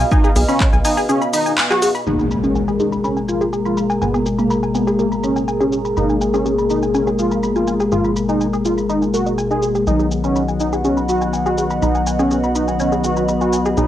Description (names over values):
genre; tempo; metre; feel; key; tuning
melodic techno; 123 BPM; 4/4; straight; G# dorian; A4 = 436 Hz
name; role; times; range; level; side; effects
dark analog pad; sustained chords; 0.0-13.9 s; G#3 to F#5; -23 LUFS; right 1 dB; chorus, sidechain pumping, cassette tape
tight sequenced synth; arpeggios; 0.0-13.9 s; D#4 to B5; -24 LUFS; left 1 dB; chorus, sidechain pumping, cassette tape, tape echo
plucky analog bass; bass; 0.0-13.9 s; G#1 to B1; -25 LUFS; equal; sidechain pumping
house drum kit; drums; 0.0-13.9 s; handclaps, hi-hat, shaker; -25 LUFS; equal; low-pass filter on perc, low-pass filter on hats, low-pass filter on snare
warbly tape-like pad; texture; 0.0-13.9 s; F#4 to B5; -28 LUFS; left 1 dB; chorus, built-in reverb, sidechain pumping, cassette tape
wide unison lead; melody; 0.1-13.9 s; A#3 to G#4; -20 LUFS; right 1 dB; sidechain pumping, cassette tape, tape echo
electronic kick drum; drums; 0.1-0.7 s; none; -16 LUFS; equal; none
analog synth brass; stabs; 2.1-13.9 s; B2 to B3; -22 LUFS; left 4 dB; chorus, sidechain pumping, cassette tape, tape echo
impact and riser; sound effects; 2.1-4.0, 13.8-13.9 s; none; -28 LUFS; right 1 dB; none
room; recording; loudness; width
moderate studio reverb, RT60 0.6 s; home recording on cassette; -15 LUFS; side -12 dB against mid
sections
0.0-2.1 A section; 2.1-13.9 B section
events
band accent 1.6; impact 2.1-4.0; filter sweep on analog synth lead 2.1-13.9; filter sweep on analog polysynth 2.1-13.9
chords
0.0 B; 2.1 G#madd9; 9.9 B